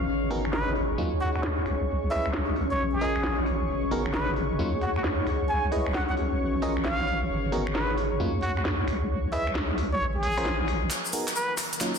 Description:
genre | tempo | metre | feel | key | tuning
UK garage, two-step garage | 133 BPM | 4/4 | swing 65% on 16ths | G# minor | A4 = 440 Hz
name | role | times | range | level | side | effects
warm analog pad | sustained chords | 0.0-12.0 s | A#4 to C#6 | -38 LUFS | equal | chorus
deep soft wobble bass | bass | 0.0-10.9 s | G#1 to D#2 | -29 LUFS | equal | chorus
deep dark ambient pad | texture | 0.0-12.0 s | C#4 to G#5 | -32 LUFS | left 2 dB | chorus, built-in reverb
FM electric piano | stabs | 0.3-11.9 s | F#3 to D#5 | -34 LUFS | right 1 dB | chorus, low-pass filter, ping-pong delay
garage drum kit | drums | 0.3-11.9 s | finger snaps, handclaps, hi-hat, snare drum | -32 LUFS | equal | low-pass filter on snare, low-pass filter on hats, low-pass filter on room
trumpet with plunger mute | melody | 0.5-11.5 s | F#4 to G#5 | -31 LUFS | equal | ping-pong delay
tube shaker | percussion | 10.9-12.0 s | none | -34 LUFS | left 8 dB | none
room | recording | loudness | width
moderate digital room reverb, RT60 1.0 s | dense, heavily limited modern master | -24 LUFS | side -6 dB against mid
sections
0.0-10.9 A section; 10.9-12.0 B section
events
build-up 10.9-12.0; drum fill 10.9-12.0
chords
0.1 G#m9; 1.0 D#m9; 1.7 C#m9; 2.8 A#m7; 3.7 G#m9; 4.6 D#m9; 5.3 C#m9; 6.4 A#m7; 7.3 G#m9; 8.2 D#m9; 8.9 C#m9; 10.0 A#m9; 10.9 G#m9

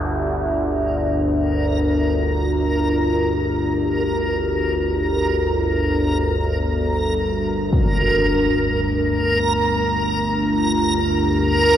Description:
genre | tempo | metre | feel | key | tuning
dark ambient drone | free time | none | none | G minor | A4 = 441 Hz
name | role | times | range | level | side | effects
overtone-sweeping drone | drone | 0.0-11.8 s | G1 to D2 | -19 LUFS | equal | chorus, built-in reverb
backwards swelling texture | texture | 0.1-11.8 s | Bb4 | -22 LUFS | right 1 dB | built-in reverb, shimmer reverb
impact | percussion | 7.7-8.0 s | none | -22 LUFS | equal | low-pass filter on sfx
room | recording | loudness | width
moderate huge ambient reverb, RT60 8.7 s | none | -17 LUFS | side -10 dB against mid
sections
0.1-11.8 A section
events
filter sweep on synth drone 0.1-11.8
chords
0.1 Gm

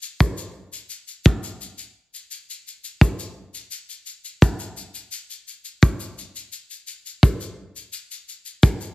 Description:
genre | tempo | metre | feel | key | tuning
pop | 85 BPM | 4/4 | straight | none | none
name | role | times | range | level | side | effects
egg shaker | percussion | 0.0-8.9 s | none | -35 LUFS | left 6 dB | none
kick drum | drums | 0.2-8.8 s | none | -15 LUFS | equal | none
room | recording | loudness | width
little or no reverb | heavily compressed radio sound | -18 LUFS | side -19 dB against mid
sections
0.0-8.9 A section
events
none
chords
none

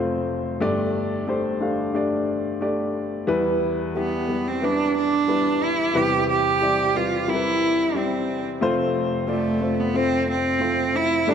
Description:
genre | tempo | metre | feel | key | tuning
pop | 90 BPM | 4/4 | straight | unclear | A4 = 441 Hz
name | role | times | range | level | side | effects
warm upright piano | accompaniment | 0.0-11.3 s | F1 to F5 | -23 LUFS | left 2 dB | none
rich cello | melody | 4.0-11.3 s | A3 to G4 | -21 LUFS | right 3 dB | none
room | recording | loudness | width
moderate concert hall reverb, RT60 2.2 s | none | -20 LUFS | side -7 dB against mid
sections
0.0-11.3 A section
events
none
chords
0.0 F; 0.6 Gsus2; 3.3 Em; 6.0 Cmaj7/E; 8.6 F

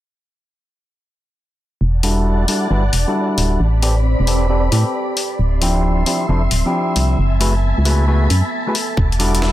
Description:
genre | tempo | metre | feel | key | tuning
UK garage, two-step garage | 134 BPM | 4/4 | swing 67% on 16ths | E minor | A4 = 440 Hz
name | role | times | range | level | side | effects
soft string machine | sustained chords | 1.8-9.5 s | C4 to D6 | -25 LUFS | equal | ensemble chorus, sidechain pumping
organ-like FM bass | bass | 1.8-9.5 s | D1 to A2 | -16 LUFS | equal | none
warbly tape-like pad | texture | 3.0-9.5 s | F3 to E6 | -30 LUFS | right 1 dB | chorus, built-in reverb, sidechain pumping
semi-hollow electric guitar | stabs | 2.0-9.5 s | F3 to D5 | -20 LUFS | equal | low-pass filter, ping-pong delay
breakbeat sampler-style drum kit | drums | 2.0-9.5 s | hi-hat, snare drum | -22 LUFS | left 4 dB | none
electronic kick drum | drums | 9.0-9.1 s | none | -16 LUFS | equal | none
room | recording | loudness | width
digital ambience | none | -14 LUFS | side -14 dB against mid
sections
1.8-9.5 A section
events
fade-in on ambient pad 1.8-9.5; filter sweep on FM bass 1.8-9.5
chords
1.8 Em11; 3.6 Am11; 5.4 Dm11; 7.2 F#m11; 9.0 Em11

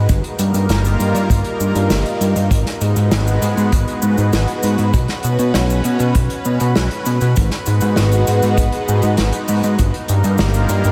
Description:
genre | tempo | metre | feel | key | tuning
synthwave | 99 BPM | 4/4 | straight | G# dorian | A4 = 440 Hz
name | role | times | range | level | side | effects
lush unison pad | sustained chords | 0.0-10.9 s | G3 to B4 | -23 LUFS | equal | chorus, phaser, vintage 12-bit sampler grit, sidechain pumping
fat analog bass | bass | 0.0-10.9 s | G1 to B2 | -18 LUFS | equal | none
kick drum | drums | 0.1-9.9 s | none | -20 LUFS | equal | none
unplugged drum kit | drums | 0.1-10.9 s | cabasa, hi-hat, snare drum | -26 LUFS | equal | none
room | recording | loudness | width
moderate huge ambient reverb, RT60 7.9 s | dreamy mix soaked in reverb | -16 LUFS | mono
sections
0.0-10.9 A section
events
none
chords
0.1 D#add9/G; 2.5 G#m7; 4.9 Bsus2; 7.4 G#m7; 9.8 D#add9/G

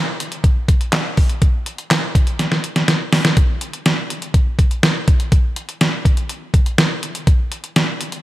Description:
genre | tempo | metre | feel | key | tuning
pop | 123 BPM | 4/4 | straight | none | none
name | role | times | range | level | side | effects
detuned 8-bit digital drum machine | drums | 0.2-8.2 s | handclaps, hi-hat, kick drum, snare drum | -15 LUFS | equal | none
room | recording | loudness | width
light reverb | dry, gritty hardware recording | -15 LUFS | side -16 dB against mid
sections
0.0-3.4 A section; 3.4-8.2 B section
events
drum fill 2.4-3.4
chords
none

